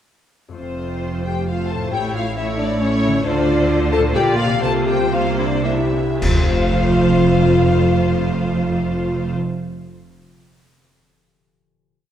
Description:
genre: classical, dramatic, fast romantic movement for symphony orchestra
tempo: 104-137 BPM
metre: 3/4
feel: straight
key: F major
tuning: A4 = 440 Hz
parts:
  - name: concert harp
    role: arpeggios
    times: 0.5-10.0 s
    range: F2 to F5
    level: -27 LUFS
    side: left 6 dB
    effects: none
  - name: rich symphonic violin section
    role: melody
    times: 0.6-9.3 s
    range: C5 to D5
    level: -27 LUFS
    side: left 3 dB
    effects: none
  - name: rich symphonic violin section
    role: second line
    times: 0.6-9.3 s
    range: C5 to A5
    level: -27 LUFS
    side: left 3 dB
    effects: none
  - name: rich symphonic viola section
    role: accompaniment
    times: 0.6-9.3 s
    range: A3 to F4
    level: -24 LUFS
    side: right 1 dB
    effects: none
  - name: warm French horn section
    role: sustained chords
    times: 0.6-9.3 s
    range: C4 to A4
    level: -22 LUFS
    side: left 3 dB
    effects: none
  - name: clear symphonic double bass section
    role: bass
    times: 0.6-9.3 s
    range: F1 to D2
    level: -24 LUFS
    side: right 4 dB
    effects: none
  - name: rich symphonic cello section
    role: bass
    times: 0.6-9.3 s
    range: F2 to D3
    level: -22 LUFS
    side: right 2 dB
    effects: none
  - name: cymbal swell, clash cymbals and concert bass drum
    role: percussion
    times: 3.2-7.3 s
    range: none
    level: -23 LUFS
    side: equal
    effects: none
room: moderate scoring stage reverb, RT60 1.8 s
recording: dark, warm production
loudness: -16 LUFS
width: side -10 dB against mid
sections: 0.6-6.2 A section; 6.2-9.6 final chord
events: slowing down 2.6-6.2; band accent 6.2-6.8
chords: 0.6 F; 1.9 A; 3.3 Dm7; 4.2 Bb6; 4.6 C7sus4; 5.6 C9; 6.2 F

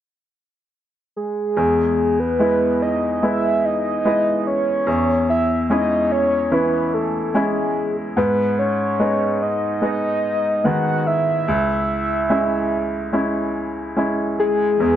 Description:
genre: pop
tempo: 73 BPM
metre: 4/4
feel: straight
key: C# minor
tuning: A4 = 440 Hz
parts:
  - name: soft octave-layered synth lead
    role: melody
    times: 1.2-15.0 s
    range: G#4 to F#5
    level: -20 LUFS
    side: equal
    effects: chorus, plate reverb
  - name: bright baby grand piano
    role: accompaniment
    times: 1.6-15.0 s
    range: C#2 to E4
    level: -20 LUFS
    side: equal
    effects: plate reverb
  - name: dark French horn section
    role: sustained chords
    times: 14.8-15.0 s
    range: E2 to G#4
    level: -21 LUFS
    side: equal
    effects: none
room: moderate studio reverb, RT60 0.5 s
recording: dark, warm production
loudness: -17 LUFS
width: side -11 dB against mid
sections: 0.0-1.6 A section; 1.6-15.0 B section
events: none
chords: 0.0 N.C.; 1.6 E; 4.9 C#m/E; 8.2 G#m; 11.5 C#m

